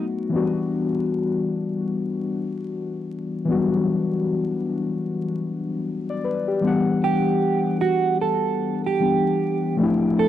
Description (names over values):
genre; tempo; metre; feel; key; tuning
lo-fi hip hop; 76 BPM; 4/4; swing 62% on 16ths; E minor; A4 = 441 Hz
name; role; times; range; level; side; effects
muted felt-like synth keys; accompaniment; 0.0-10.3 s; E3 to F#5; -22 LUFS; left 3 dB; chorus, tremolo, low-pass filter, cassette tape
mellow electric guitar; melody; 7.0-10.3 s; F#4 to A4; -22 LUFS; right 7 dB; analog chorus, low-pass filter, cassette tape, tape echo
room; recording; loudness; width
wet booth ambience, RT60 0.3 s; home recording on cassette, vinyl crackle; -21 LUFS; side -11 dB against mid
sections
0.0-6.6 A section; 6.6-10.3 B section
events
none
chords
0.3 Em9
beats
| 0.32 1.10 1.89 2.68 | 3.47 4.26 5.05 5.84 | 6.63 7.42 8.21 9.00 | 9.79